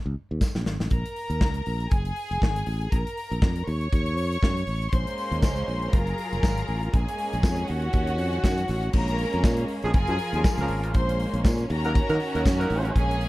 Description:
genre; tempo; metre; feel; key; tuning
disco; 120 BPM; 4/4; swing 56% on 16ths; Bb minor; A4 = 440 Hz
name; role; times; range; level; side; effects
modern bright fingered electric bass; bass; 0.1-13.2 s; F1 to Eb3; -27 LUFS; equal; none
modern studio drum kit; drums; 0.4-13.3 s; crash cymbal, hi-hat, kick drum, snare drum; -24 LUFS; equal; none
tambourine; percussion; 0.4-0.5, 5.4-12.6 s; none; -43 LUFS; right 2 dB; none
clear studio string section; second line; 0.9-13.3 s; Gb4 to Db6; -31 LUFS; equal; none
clear studio string section; sustained chords; 4.9-13.3 s; Eb3 to Bb4; -31 LUFS; equal; none
mellow horn section; stabs; 9.8-12.9 s; F3 to Bb4; -29 LUFS; right 2 dB; tape echo
room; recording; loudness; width
little or no reverb; dark, warm production; -23 LUFS; side -18 dB against mid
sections
0.9-8.9 A section; 8.9-13.3 B section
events
drum fill 0.0-0.9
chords
0.0 Eb5; 0.9 Bbm; 1.9 Gbsus2; 2.9 Bb5; 3.7 Ebm7; 4.9 Bbm7; 5.9 Gbmaj9; 6.9 Bbm7; 7.7 Ebm7; 8.9 Bbm7; 9.9 Gbmaj9; 10.9 Bbm7; 11.7 Ebm7

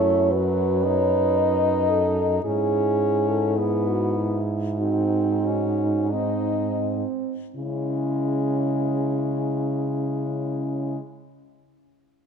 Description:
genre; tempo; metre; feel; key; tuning
classical, lyrical piece for horn quartet; 40-60 BPM; 4/4; rubato; C# minor; A4 = 440 Hz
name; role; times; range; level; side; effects
mellow French horn; melody; 0.0-11.0 s; E4 to D#5; -28 LUFS; left 11 dB; none
mellow French horn; second line; 0.0-11.0 s; B#3 to C#5; -25 LUFS; right 8 dB; none
clear French horn; accompaniment; 0.0-11.0 s; F#3 to D#4; -29 LUFS; left 6 dB; none
mellow French horn; bass; 0.0-11.0 s; F#2 to C#3; -26 LUFS; right 1 dB; none
room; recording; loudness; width
moderate scoring stage reverb, RT60 2.2 s; dark, warm production; -21 LUFS; side -6 dB against mid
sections
0.0-7.6 A section; 7.6-12.3 B section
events
slowing down 0.0-7.6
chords
0.3 B9/F#; 2.4 C#m/G#; 4.8 G#7; 7.6 C#m

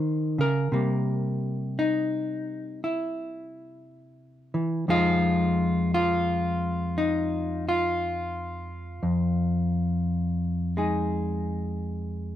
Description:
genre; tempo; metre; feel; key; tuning
solo jazz; 58 BPM; 4/4; swing 67% on 8ths; F minor; A4 = 440 Hz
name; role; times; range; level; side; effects
hollow-body jazz guitar; solo; 0.0-12.4 s; F2 to C5; -24 LUFS; equal; none
room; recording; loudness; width
light reverb; none; -24 LUFS; side -11 dB against mid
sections
0.0-12.4 A section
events
none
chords
0.0 Dbmaj7(no3); 0.7 C7#9; 4.9 Fm7

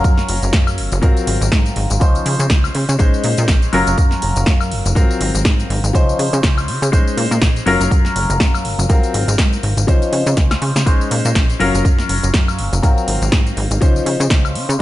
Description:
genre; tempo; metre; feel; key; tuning
filtered disco house; 122 BPM; 4/4; swing 56% on 16ths; unclear; A4 = 440 Hz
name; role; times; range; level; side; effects
clear concert grand piano; accompaniment; 0.0-14.8 s; F3 to C5; -20 LUFS; left 2 dB; phaser, vintage 12-bit sampler grit, sidechain pumping
plucky analog bass; bass; 0.0-14.8 s; Gb1 to Db3; -18 LUFS; equal; tube saturation, sidechain pumping
electronic kick drum; drums; 0.0-14.4 s; none; -14 LUFS; equal; none
punchy analog drum machine; drums; 0.0-14.8 s; hi-hat, snare drum, tambourine, woodblock; -22 LUFS; left 1 dB; overdrive, sidechain pumping on hats, sidechain pumping on perc
room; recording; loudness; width
light reverb, digital ambience; nothing above 10.7 kHz; -13 LUFS; side -15 dB against mid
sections
0.0-14.8 A section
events
drum fill 10.4-10.9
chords
0.0 Gbmaj7; 1.0 Ab13; 2.0 Dbmaj9; 3.0 Bbm11; 3.7 Gbmaj7; 5.0 Ab13; 5.9 Dbmaj9; 6.9 Bbm11; 7.7 Gbmaj7; 8.9 Ab13; 9.9 Dbmaj9; 10.9 Bbm11; 11.6 Gbmaj7; 12.8 Ab13; 13.8 Dbmaj9

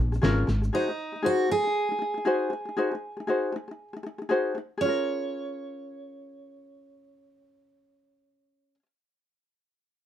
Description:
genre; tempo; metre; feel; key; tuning
acoustic pop; 118 BPM; 4/4; swing 60% on 16ths; Bb minor; A4 = 440 Hz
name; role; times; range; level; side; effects
ukulele; accompaniment; 0.0-8.9 s; Db4 to C5; -28 LUFS; left 2 dB; none
woody fretless electric bass; bass; 0.0-0.7 s; Ab1 to Bb1; -25 LUFS; equal; none
shaker and snare drum; drums; 0.1-0.7 s; none; -27 LUFS; equal; none
picked steel-string acoustic guitar; melody; 0.7-8.7 s; Eb4 to Db5; -29 LUFS; right 2 dB; plate reverb
room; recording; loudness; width
light reverb; dark, warm production; -25 LUFS; side -11 dB against mid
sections
0.0-4.8 A section; 4.8-8.9 B section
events
none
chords
0.0 Bbm7; 0.7 Ab7; 4.8 Bbm7

